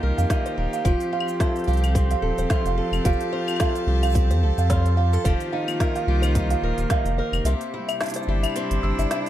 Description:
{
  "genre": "folktronica",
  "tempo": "109 BPM",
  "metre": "4/4",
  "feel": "swing 56% on 16ths",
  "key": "F mixolydian",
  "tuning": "A4 = 440 Hz",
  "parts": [
    { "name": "bright string quartet", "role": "sustained chords", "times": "0.0-9.3 s", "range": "C3 to A5", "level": "-30 LUFS", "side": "equal", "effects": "none" },
    { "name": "picked swing-style acoustic guitar", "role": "arpeggios", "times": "0.0-9.3 s", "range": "C3 to Bb4", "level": "-28 LUFS", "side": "left 1 dB", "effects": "tape echo" },
    { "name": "warm sub bass", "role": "bass", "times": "0.0-9.1 s", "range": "Eb1 to F2", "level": "-22 LUFS", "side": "equal", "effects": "none" },
    { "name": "music box", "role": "second line", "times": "0.2-9.3 s", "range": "C5 to E6", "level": "-29 LUFS", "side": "right 4 dB", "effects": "tape echo" },
    { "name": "organic electronic drum kit", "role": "drums", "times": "0.2-9.3 s", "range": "claves, hi-hat, shaker, snare drum", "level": "-31 LUFS", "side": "left 2 dB", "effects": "none" },
    { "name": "electronic kick drum", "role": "drums", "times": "0.3-7.0 s", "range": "none", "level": "-23 LUFS", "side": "equal", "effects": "none" }
  ],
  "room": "light reverb",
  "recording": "dark, warm production, faint mains hum",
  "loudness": "-20 LUFS",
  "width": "side -12 dB against mid",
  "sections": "0.0-9.3 A section",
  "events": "break 7.5-9.3",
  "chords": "0.0 Eb; 0.8 Fadd9; 5.3 Eb/F; 7.5 Cadd9"
}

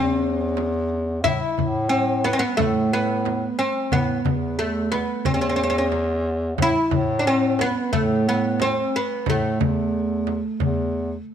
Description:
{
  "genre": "Arabic maqam ensemble",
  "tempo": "90 BPM",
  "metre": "4/4",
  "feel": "straight",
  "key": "unclear",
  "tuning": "A4 = 438 Hz",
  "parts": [
    { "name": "oud", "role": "melody", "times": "0.0-11.3 s", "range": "A3 to E4", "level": "-22 LUFS", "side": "right 1 dB", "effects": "none" },
    { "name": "mellow bass clarinet", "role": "bass", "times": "0.0-11.2 s", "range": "E2 to A2", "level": "-25 LUFS", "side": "left 1 dB", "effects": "none" },
    { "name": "darbuka", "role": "percussion", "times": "0.2-11.2 s", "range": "none", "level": "-28 LUFS", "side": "left 10 dB", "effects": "none" },
    { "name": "frame drum", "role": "percussion", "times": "0.6-10.8 s", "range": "none", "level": "-28 LUFS", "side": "right 5 dB", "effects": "none" }
  ],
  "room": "moderate echo chamber reverb, RT60 1.8 s",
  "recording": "1960s-style stereo",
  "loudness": "-20 LUFS",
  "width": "side -9 dB against mid",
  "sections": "0.0-11.3 A section",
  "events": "none",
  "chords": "none"
}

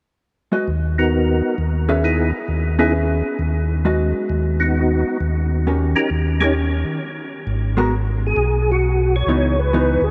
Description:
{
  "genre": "jazz",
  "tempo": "132 BPM",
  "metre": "4/4",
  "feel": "swing 66% on 8ths",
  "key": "G# minor",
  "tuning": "A4 = 443 Hz",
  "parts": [
    { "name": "vintage hollow-body jazz guitar", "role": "accompaniment", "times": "0.5-10.0 s", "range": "D#3 to E5", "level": "-26 LUFS", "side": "equal", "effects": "none" },
    { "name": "mellow tonewheel organ", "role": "bass", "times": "0.7-10.1 s", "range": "G#1 to D#2", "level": "-22 LUFS", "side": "equal", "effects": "slow rotary speaker" },
    { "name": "percussive tonewheel organ", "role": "melody", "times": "1.0-10.1 s", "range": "B3 to C#5", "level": "-24 LUFS", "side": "equal", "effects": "slow rotary speaker, chorus vibrato" }
  ],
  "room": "moderate huge ambient reverb, RT60 8.2 s",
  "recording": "in a vast, echoing space",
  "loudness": "-19 LUFS",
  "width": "mono",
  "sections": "0.2-7.5 A section; 7.5-10.1 B section",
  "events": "break 6.6-7.5",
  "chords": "0.2 G#m7; 2.0 C#m7; 3.9 G#m7; 5.7 D#7; 7.5 G#m7; 9.3 C#m9"
}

